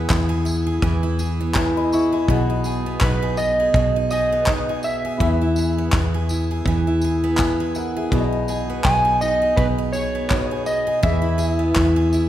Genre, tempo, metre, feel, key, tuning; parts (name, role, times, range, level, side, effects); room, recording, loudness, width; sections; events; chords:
acoustic pop; 82 BPM; 4/4; swing 55% on 16ths; B major; A4 = 440 Hz
electric slide guitar; melody; 0.0-12.3 s; B4 to G#5; -21 LUFS; right 1 dB
picked steel-string acoustic guitar; accompaniment; 0.0-12.3 s; B2 to G#4; -23 LUFS; right 1 dB
warm concert grand piano; accompaniment; 0.0-12.3 s; B3 to C#6; -30 LUFS; left 7 dB
vintage muted fingered electric bass; bass; 0.0-12.3 s; B1 to E2; -23 LUFS; equal
loose indie drum kit; drums; 0.1-12.3 s; handclaps, kick drum, tambourine; -23 LUFS; equal
moderate concert hall reverb, RT60 1.9 s; recorded in a church or concert hall; -18 LUFS; side -12 dB against mid
0.0-12.3 A section
0.0 E; 2.3 B6; 5.2 E; 8.1 B6; 11.0 E